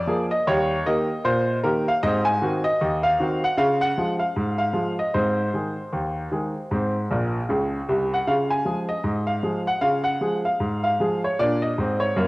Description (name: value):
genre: ragtime piano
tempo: 77 BPM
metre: 2/4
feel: swing 60% on 16ths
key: Db major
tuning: A4 = 440 Hz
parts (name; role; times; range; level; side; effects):
- clear grand piano; solo; 0.0-12.3 s; Bb1 to Ab5; -21 LUFS; equal; cassette tape
room: wet spring reverb, RT60 2.1 s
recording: home recording on cassette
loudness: -21 LUFS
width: side -22 dB against mid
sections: 0.0-12.3 A section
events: grand piano fill 7.1-8.3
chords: 0.5 Eb; 2.0 Ab7; 3.6 Db; 5.1 Ab; 8.3 Db; 11.4 Bb7